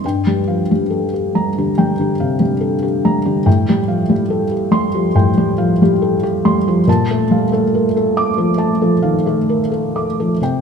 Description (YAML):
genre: neoclassical minimalist piano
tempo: 70 BPM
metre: 4/4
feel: rubato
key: unclear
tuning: A4 = 440 Hz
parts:
  - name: felt-muted upright piano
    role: solo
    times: 0.0-10.6 s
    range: G2 to D6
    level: -13 LUFS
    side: equal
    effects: none
room: moderate concert hall reverb, RT60 1.9 s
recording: minimal, uncompressed stereo recording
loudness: -13 LUFS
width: side -6 dB against mid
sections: 0.0-10.6 A section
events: none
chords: 0.0 Gm7; 3.5 Fadd9/A; 6.9 Bbmaj7